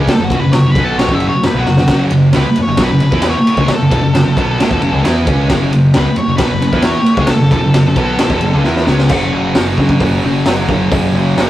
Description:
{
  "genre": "garage rock duo or trio",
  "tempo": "133 BPM",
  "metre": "4/4",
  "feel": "straight",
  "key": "F# minor",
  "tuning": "A4 = 440 Hz",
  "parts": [
    { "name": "thick fuzz guitar", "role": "riff", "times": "0.0-11.5 s", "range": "E2 to E4", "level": "-13 LUFS", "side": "equal", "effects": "distortion" },
    { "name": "growling picked electric bass", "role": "bass", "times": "0.0-11.5 s", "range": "E1 to E2", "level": "-18 LUFS", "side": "equal", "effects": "overdrive" },
    { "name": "octave-fuzz lead guitar", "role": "melody", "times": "0.1-8.6 s", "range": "F#4 to E5", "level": "-20 LUFS", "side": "left 2 dB", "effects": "distortion" },
    { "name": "raw garage drum kit", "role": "drums", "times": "0.1-11.5 s", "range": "crash cymbal, hi-hat, kick drum, ride cymbal, snare drum, splash cymbal", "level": "-16 LUFS", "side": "equal", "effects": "none" }
  ],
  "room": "moderate stone room reverb, RT60 1.0 s",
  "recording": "rough rehearsal-room recording, warm saturation",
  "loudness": "-10 LUFS",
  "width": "side -14 dB against mid",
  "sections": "0.0-9.1 A section; 9.1-11.5 B section",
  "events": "lead electric guitar solo 0.0-9.1; drum fill 1.7, 8.7-9.1",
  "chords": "0.0 F#m; 9.1 F#5",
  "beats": "| 0.08 0.54 0.99 1.44 | 1.89 2.34 2.79 3.24 | 3.69 4.14 4.59 5.04 | 5.50 5.95 6.40 6.85 | 7.30 7.76 8.21 8.66 | 9.11 9.57 10.02 10.47 | 10.92 11.37"
}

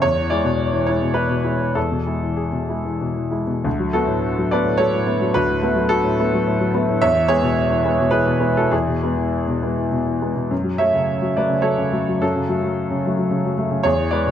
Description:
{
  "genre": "neoclassical minimalist piano",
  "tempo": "93-112 BPM",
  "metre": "3/4",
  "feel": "rubato",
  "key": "F# minor",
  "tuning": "A4 = 438 Hz",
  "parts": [
    { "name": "warm baby grand piano", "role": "solo", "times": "0.0-14.3 s", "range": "D2 to E5", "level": "-17 LUFS", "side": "equal", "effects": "none" }
  ],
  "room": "light reverb",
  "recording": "nothing above 11.0 kHz",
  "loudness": "-17 LUFS",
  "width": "side -9 dB against mid",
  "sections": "0.0-3.7 A section; 3.7-14.3 B section",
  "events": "none",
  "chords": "0.0 E; 3.7 D6; 7.0 C#m7/E; 10.5 F#m",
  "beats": "| 0.03 0.59 1.16 | 1.76 2.40 3.02 | 3.65 4.24 4.81 | 5.37 5.92 6.47 | 7.03 7.58 8.14 | 8.73 9.33 9.93 | 10.51 11.09 11.65 | 12.22 12.77 13.30 | 13.85"
}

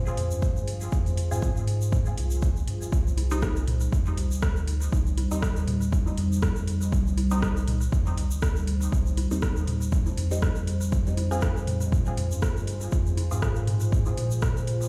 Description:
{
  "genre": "dub techno",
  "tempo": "120 BPM",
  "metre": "4/4",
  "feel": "swing 55% on 16ths",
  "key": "C minor",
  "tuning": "A4 = 438 Hz",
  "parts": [
    { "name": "deep dark ambient pad", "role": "sustained chords", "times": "0.0-14.9 s", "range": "G3 to C5", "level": "-36 LUFS", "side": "equal", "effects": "chorus, built-in reverb, sidechain pumping" },
    { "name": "filtered dub chord stab", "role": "stabs", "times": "0.0-13.4 s", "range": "G3 to Ab4", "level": "-39 LUFS", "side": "equal", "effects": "phaser, sidechain pumping, dub echo" },
    { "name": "warm sub bass", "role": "bass", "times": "0.0-14.9 s", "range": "C2 to Bb2", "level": "-29 LUFS", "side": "equal", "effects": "sidechain pumping" },
    { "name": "tube shaker", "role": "percussion", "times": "0.1-14.9 s", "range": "none", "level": "-44 LUFS", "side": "equal", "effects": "none" },
    { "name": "deep house drum kit", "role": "drums", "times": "0.2-14.8 s", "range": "hi-hat, rim click", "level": "-38 LUFS", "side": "equal", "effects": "overdrive, dub echo" },
    { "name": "electronic kick drum", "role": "drums", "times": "0.4-14.5 s", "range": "none", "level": "-28 LUFS", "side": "equal", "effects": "overdrive" },
    { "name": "electronic congas and toms", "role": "percussion", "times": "3.2-14.2 s", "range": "none", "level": "-37 LUFS", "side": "equal", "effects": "sidechain pumping on perc, sidechain pumping on toms, dub echo" }
  ],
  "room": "light reverb",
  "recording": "played on a big sound system in a bare room, stone room reverb",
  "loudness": "-26 LUFS",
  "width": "mono",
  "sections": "0.0-14.9 A section",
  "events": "none",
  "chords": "0.0 Fm; 2.9 Cm; 10.9 Fm",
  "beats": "0.42 | 0.92 1.42 1.92 2.42 | 2.92 3.42 3.92 4.42 | 4.92 5.42 5.92 6.42 | 6.92 7.42 7.92 8.42 | 8.92 9.42 9.92 10.42 | 10.92 11.42 11.92 12.42 | 12.92 13.42 13.92 14.42"
}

